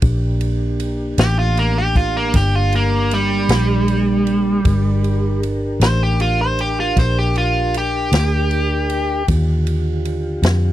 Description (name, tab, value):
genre	slow blues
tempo	52 BPM (dotted quarters)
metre	12/8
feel	straight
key	G minor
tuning	A4 = 445 Hz
part	mellow tonewheel organ	sustained chords	0.0-10.7 s	D3 to Bb4	-25 LUFS	equal	slow rotary speaker, chorus vibrato
part	vintage muted fingered electric bass	bass	0.0-10.7 s	G1 to F2	-18 LUFS	equal	none
part	swinging big-band drum kit	drums	0.0-10.6 s	kick drum, ride cymbal, snare drum	-22 LUFS	equal	none
part	biting overdriven guitar	melody	1.2-9.3 s	G3 to C5	-19 LUFS	right 1 dB	none
room	little or no reverb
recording	dry, close 1970s-style studio recording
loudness	-15 LUFS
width	side -13 dB against mid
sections	0.0-10.7 A section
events	overdriven electric guitar solo 0.0-10.7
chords	0.0 Gm; 9.3 Ebmaj7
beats	| 0.03 1.18 2.34 3.50 | 4.65 5.81 6.97 8.12 | 9.28 10.44